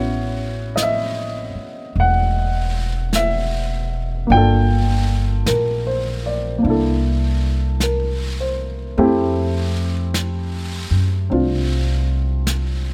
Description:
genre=jazz ballad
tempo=51 BPM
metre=4/4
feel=swing 66% on 8ths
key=F major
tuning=A4 = 443 Hz
part: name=warm baby grand piano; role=accompaniment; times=0.0-12.9 s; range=A3 to G5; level=-23 LUFS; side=equal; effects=none
part: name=upright bass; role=bass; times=0.0-12.9 s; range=E1 to Gb2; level=-22 LUFS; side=equal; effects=none
part: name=jazz brush drum kit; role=drums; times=0.8-12.9 s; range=brushed snare drum, hi-hat, snare drum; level=-32 LUFS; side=equal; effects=none
room=little or no reverb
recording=none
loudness=-20 LUFS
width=mono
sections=0.0-12.9 A section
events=none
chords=0.0 A6; 4.3 Gm7; 6.6 C13; 9.0 Fmaj9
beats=0.79 1.96 3.13 | 4.30 5.47 6.63 7.80 | 8.97 10.14 11.31 12.47

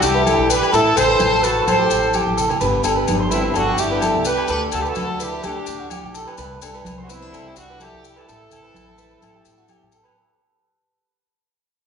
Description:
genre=highlife guitar band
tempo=127 BPM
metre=4/4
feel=straight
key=unclear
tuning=A4 = 440 Hz
part: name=bright horn section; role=melody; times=0.0-9.9 s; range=C4 to C5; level=-20 LUFS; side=equal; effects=none
part: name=picked steel-string acoustic guitar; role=accompaniment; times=0.0-10.2 s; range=E2 to G4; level=-29 LUFS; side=left 5 dB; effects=none
part: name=electric guitar through a small old amp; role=arpeggios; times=0.0-10.2 s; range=F#4 to C5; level=-21 LUFS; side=right 1 dB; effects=spring reverb
part: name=upright bass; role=bass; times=0.0-10.0 s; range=G1 to D2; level=-27 LUFS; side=equal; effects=none
part: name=maracas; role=percussion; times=0.0-10.0 s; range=none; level=-29 LUFS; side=left 6 dB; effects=none
part: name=agogo bells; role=percussion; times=0.3-10.2 s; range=none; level=-29 LUFS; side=left 2 dB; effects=none
part: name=congas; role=percussion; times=0.3-10.0 s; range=none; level=-30 LUFS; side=equal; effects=none
room=wet large studio reverb, RT60 1.4 s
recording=band playing live in one room, nothing above 10.5 kHz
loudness=-16 LUFS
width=side -6 dB against mid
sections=0.0-10.2 A section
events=fade-out 0.0-10.2; drum fill 2.1-2.6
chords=0.0 Cadd9; 0.7 Am; 2.6 G; 4.5 Dsus4; 6.4 Cadd9; 8.3 Am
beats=0.27 | 0.74 1.21 1.68 2.15 | 2.62 3.09 3.56 4.03 | 4.50 4.97 5.44 5.92 | 6.39 6.86 7.33 7.80 | 8.28 8.75 9.22 9.69

